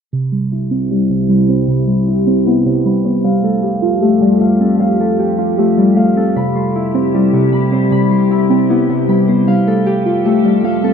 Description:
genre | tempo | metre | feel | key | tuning
hip hop | 154 BPM | 4/4 | half-time | C major | A4 = 440 Hz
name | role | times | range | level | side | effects
muted felt-like synth keys | accompaniment | 0.1-10.9 s | C3 to G4 | -15 LUFS | right 4 dB | chorus, low-pass filter
glassy FM pad | sustained chords | 0.7-10.9 s | C2 to A4 | -20 LUFS | left 2 dB | ensemble chorus, built-in reverb, low-pass filter
Celtic harp | arpeggios | 0.1-10.9 s | C3 to C6 | -15 LUFS | left 4 dB | low-pass filter, tape echo
room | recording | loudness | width
moderate studio reverb, RT60 0.6 s | rough home demo mix | -11 LUFS | side -7 dB against mid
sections
0.1-10.9 A section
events
filter sweep 0.1-10.9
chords
0.1 Cmaj7; 3.2 Fadd9; 6.4 Cmaj7; 9.5 Fadd9

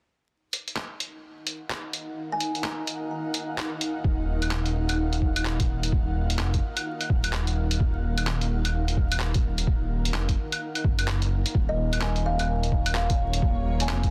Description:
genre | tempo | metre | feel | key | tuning
future garage | 128 BPM | 4/4 | swing 62% on 16ths | Eb minor | A4 = 443 Hz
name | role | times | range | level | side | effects
granular cloud pad | sustained chords | 1.2-14.1 s | Bb3 to Gb5 | -36 LUFS | equal | built-in reverb, vintage 12-bit sampler grit, sidechain pumping
lo-fi sampler-style drum kit | drums | 0.5-14.1 s | claves, handclaps, hi-hat | -33 LUFS | equal | soft clipping on snare
kalimba | melody | 2.3-3.3, 11.7-14.1 s | Eb5 to Bb5 | -34 LUFS | equal | delay
dark detuned saw bass | bass | 4.0-14.1 s | Eb1 to Gb1 | -29 LUFS | equal | tube saturation, sidechain pumping
electronic kick drum | drums | 4.0-14.1 s | none | -27 LUFS | equal | none
room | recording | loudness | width
digital ambience | dense, heavily limited modern master, vinyl crackle | -27 LUFS | mono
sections
0.3-4.0 A section; 4.0-14.1 B section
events
none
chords
0.3 Ebm; 11.5 Bbm/Eb

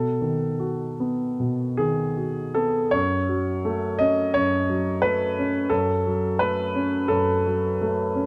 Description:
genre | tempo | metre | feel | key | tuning
neoclassical minimalist piano | 75-89 BPM | 4/4 | rubato | F# dorian | A4 = 444 Hz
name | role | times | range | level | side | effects
warm grand piano | solo | 0.0-8.3 s | F#2 to D#5 | -24 LUFS | equal | none
room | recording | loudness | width
light reverb | dark, warm production | -24 LUFS | mono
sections
0.0-2.9 A section; 2.9-8.3 B section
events
none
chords
0.0 B7; 2.9 F#m

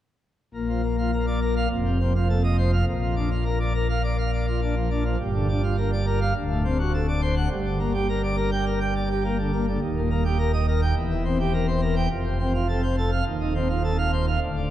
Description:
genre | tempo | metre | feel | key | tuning
classical, organ toccata | 104 BPM | 4/4 | straight | Bb major | A4 = 439 Hz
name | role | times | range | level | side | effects
pipe organ, plenum | solo | 0.5-14.7 s | D1 to G5 | -22 LUFS | equal | none
room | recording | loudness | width
wet church reverb, RT60 3.8 s | dark, warm production | -22 LUFS | side -12 dB against mid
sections
0.5-14.7 A section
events
none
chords
0.5 Bb; 1.7 F7; 2.9 Bb; 5.2 Gm7; 6.4 D7; 7.5 Gm; 9.8 Eb; 11.0 C7/E; 12.1 F; 13.3 F7/Eb

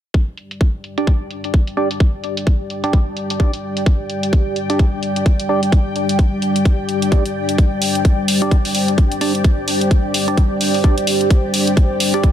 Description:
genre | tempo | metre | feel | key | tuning
bass house | 129 BPM | 4/4 | swing 59% on 16ths | unclear | A4 = 440 Hz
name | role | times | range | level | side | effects
dark analog pad | sustained chords | 0.5-12.3 s | G3 to D5 | -22 LUFS | left 2 dB | chorus, sidechain pumping
electronic hi-hat | drums | 0.1-12.3 s | none | -22 LUFS | equal | low-pass filter on hats, studio ambience
electronic kick drum | drums | 0.1-12.3 s | none | -13 LUFS | equal | studio ambience
ethereal airy pad | texture | 2.0-12.3 s | G4 to G5 | -23 LUFS | right 1 dB | ensemble chorus, built-in reverb, phaser, sidechain pumping
percussive organ stab | stabs | 1.0-12.3 s | D4 to D5 | -23 LUFS | right 2 dB | chorus, phaser, sidechain pumping, ping-pong delay
room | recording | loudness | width
light reverb | dense, heavily limited modern master | -14 LUFS | side -10 dB against mid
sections
0.1-12.3 A section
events
none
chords
0.1 G5

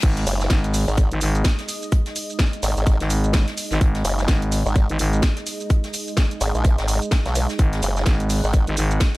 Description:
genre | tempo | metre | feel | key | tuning
bass house | 127 BPM | 4/4 | swing 59% on 16ths | unclear | A4 = 440 Hz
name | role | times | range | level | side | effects
sweeping resonant pad | sustained chords | 0.0-9.2 s | G#3 to F#5 | -32 LUFS | right 3 dB | chorus, sidechain pumping
growling FM bass | bass | 0.0-9.0 s | G#1 | -21 LUFS | equal | tube saturation, sidechain pumping
electronic kick drum | drums | 0.0-9.1 s | none | -18 LUFS | equal | small room reverb
garage drum kit | drums | 0.0-9.2 s | crash cymbal, hi-hat, shaker, snare drum | -28 LUFS | equal | small room reverb
jazz brush drum kit | drums | 0.0-9.2 s | hi-hat, snare drum | -36 LUFS | left 2 dB | sidechain pumping on hats, high-pass filter on hats, small room reverb, high-pass filter on snare, high-pass filter on room
formant-sweep wobble bass | bass | 0.3-8.7 s | F#1 to B1 | -21 LUFS | equal | chorus, sidechain pumping
room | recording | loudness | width
little or no reverb | none | -18 LUFS | side -20 dB against mid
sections
0.0-9.2 A section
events
drop 0.0-9.2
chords
0.0 G#5

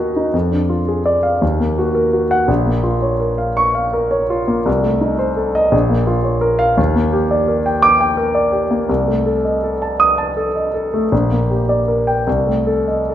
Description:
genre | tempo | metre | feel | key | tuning
classical, romantic character piece for solo piano | 56 BPM (dotted quarters) | 6/8 | uneven beats, rubato | unclear | A4 = 441 Hz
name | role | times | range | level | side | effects
warm concert grand piano | solo | 0.0-13.1 s | Bb1 to Eb6 | -14 LUFS | equal | none
room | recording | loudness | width
wet recital hall reverb, RT60 1.4 s | none | -14 LUFS | side -11 dB against mid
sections
0.0-13.1 A section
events
none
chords
0.3 Ddim/F; 1.4 Ebm; 2.5 Bbm; 4.7 Adim/C; 5.7 Bbm; 6.8 Ebmaj7; 8.9 Adim/C; 11.1 Gm/Bb; 12.3 Adim/C

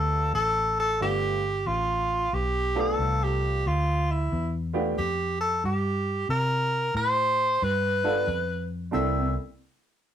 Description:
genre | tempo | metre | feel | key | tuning
electric blues shuffle | 91 BPM | 4/4 | swing 67% on 8ths | unclear | A4 = 441 Hz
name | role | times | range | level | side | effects
clear tenor saxophone | melody | 0.0-9.3 s | E4 to E5 | -25 LUFS | equal | none
clear upright piano | accompaniment | 0.0-9.3 s | G3 to A4 | -30 LUFS | right 2 dB | none
vintage muted fingered electric bass | bass | 0.0-9.3 s | G1 to C3 | -29 LUFS | equal | none
clean lap steel guitar | second line | 8.9-9.3 s | C4 | -30 LUFS | right 1 dB | none
room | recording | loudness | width
moderate studio reverb, RT60 0.5 s | rough rehearsal-room recording, warm saturation | -24 LUFS | side -10 dB against mid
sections
0.0-8.9 A section; 8.9-10.1 B section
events
none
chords
0.0 G9; 6.3 Am; 7.6 G9; 8.9 C13

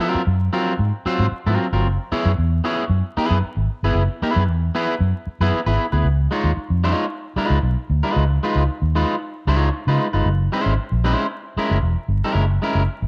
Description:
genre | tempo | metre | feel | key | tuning
funk | 114 BPM | 4/4 | straight | unclear | A4 = 442 Hz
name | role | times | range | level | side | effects
electric guitar at the edge of break-up | accompaniment | 0.0-12.8 s | Gb3 to Db5 | -24 LUFS | equal | spring reverb
vintage muted fingered electric bass | bass | 0.1-13.1 s | Fb1 to Db3 | -21 LUFS | equal | none
room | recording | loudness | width
little or no reverb | dry, close 1970s-style studio recording, vinyl crackle | -20 LUFS | mono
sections
0.0-6.1 A section; 6.1-13.1 B section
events
none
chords
0.0 Ab13; 1.8 Gb9sus4; 6.1 Db9; 10.3 Gb9

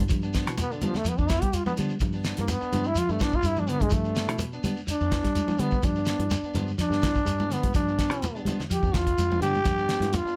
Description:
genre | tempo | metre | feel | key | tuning
afrobeat | 126 BPM | 4/4 | straight | G mixolydian | A4 = 440 Hz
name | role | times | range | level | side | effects
clean electric guitar | stabs | 0.0-10.4 s | F3 to D4 | -39 LUFS | equal | none
fingered electric bass | bass | 0.0-10.3 s | E2 to G3 | -32 LUFS | equal | none
semi-hollow electric guitar | arpeggios | 0.1-10.1 s | D3 to F3 | -36 LUFS | equal | none
damped 70s drum kit | drums | 0.1-10.2 s | hi-hat, kick drum, snare drum | -31 LUFS | equal | none
congas | percussion | 0.1-10.3 s | none | -37 LUFS | equal | none
shekere | percussion | 0.1-10.4 s | none | -37 LUFS | equal | none
growling trombone | melody | 0.6-10.4 s | D3 to G4 | -30 LUFS | equal | none
barky tine electric piano | accompaniment | 10.0-10.2 s | A3 to F4 | -42 LUFS | equal | none
room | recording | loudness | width
moderate club reverb, RT60 0.5 s | none | -26 LUFS | mono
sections
0.0-10.4 A section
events
trombone solo 0.0-10.4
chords
0.0 G7

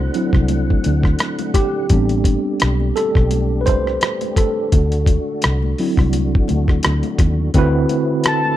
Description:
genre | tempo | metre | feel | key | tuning
R&B, neo-soul | 85 BPM | 4/4 | swing 55% on 16ths | unclear | A4 = 440 Hz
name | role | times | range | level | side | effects
tine electric piano | accompaniment | 0.0-8.6 s | D3 to C5 | -20 LUFS | right 1 dB | overdrive, fast stereo tremolo
percussive tonewheel organ | sustained chords | 0.0-8.6 s | D3 to F#5 | -28 LUFS | left 1 dB | fast rotary speaker, chorus vibrato
vintage muted fingered electric bass | bass | 0.0-7.8 s | A1 to D#2 | -18 LUFS | equal | none
dusty soul sampler-style drum kit | drums | 0.1-8.4 s | hi-hat, kick drum, rim click | -17 LUFS | equal | none
congas | percussion | 0.5-8.6 s | none | -30 LUFS | left 15 dB | none
soft octave-layered synth lead | melody | 8.3-8.6 s | A5 | -17 LUFS | left 2 dB | chorus
room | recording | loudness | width
digital ambience | dry, close 1970s-style studio recording | -15 LUFS | side -13 dB against mid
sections
0.0-7.5 A section; 7.5-8.6 B section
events
tine electric piano solo 0.0-7.5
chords
0.0 D7; 1.9 Am11; 4.7 D7; 7.5 D13

